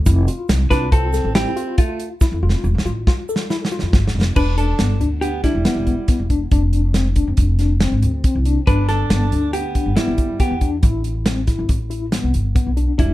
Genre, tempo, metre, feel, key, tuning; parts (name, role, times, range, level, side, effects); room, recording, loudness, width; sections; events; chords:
progressive instrumental, band music in an uneven meter; 139 BPM; 5/4; straight; E phrygian; A4 = 440 Hz
upright bass; bass; 0.0-13.1 s; E1 to F2; -19 LUFS; equal
tine electric piano; arpeggios; 0.1-13.1 s; B3 to A4; -24 LUFS; left 4 dB; medium tremolo, digital delay
natural country drum kit; drums; 0.1-13.1 s; crash cymbal, hi-hat, kick drum, snare drum; -18 LUFS; equal
egg shaker; percussion; 0.1-3.8 s; -37 LUFS; right 6 dB
vintage hollow-body jazz guitar; melody; 0.7-13.1 s; E4 to B4; -23 LUFS; equal; plate reverb
clear alto saxophone; second line; 0.7-13.1 s; G3 to D4; -27 LUFS; right 5 dB
light reverb; dark, warm production; -16 LUFS; side -16 dB against mid
0.0-4.4 A section; 4.4-13.1 B section
drum fill 2.2-4.4
0.1 Fmaj7; 4.4 Em7; 6.5 F5; 8.7 Em7/G; 10.8 Asus2